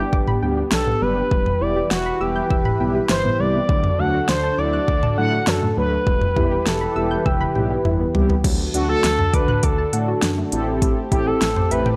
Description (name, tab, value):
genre	synth-pop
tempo	101 BPM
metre	4/4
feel	straight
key	unclear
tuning	A4 = 440 Hz
part	expressive synth lead	melody	0.0-12.0 s	F#4 to F#5	-25 LUFS	equal	chorus
part	mellow synth brass	accompaniment	0.0-11.9 s	F#3 to A4	-28 LUFS	equal	chorus
part	warm analog pad	sustained chords	0.0-12.0 s	D3 to B4	-29 LUFS	equal	chorus
part	soft round pluck	arpeggios	0.0-12.0 s	F#3 to G6	-30 LUFS	equal	chorus
part	smooth synth bass	bass	0.0-11.9 s	E1 to A2	-28 LUFS	equal	none
part	deep house drum kit	drums	0.1-12.0 s	crash cymbal, hi-hat, kick drum, snare drum, toms	-24 LUFS	equal	overdrive
room	light reverb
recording	dry, gritty hardware recording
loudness	-20 LUFS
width	mono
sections	0.0-8.4 A section; 8.4-12.0 B section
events	drum fill 7.3-8.4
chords	0.0 G; 1.3 Em; 3.7 D; 6.1 Em; 8.4 D; 10.5 Am7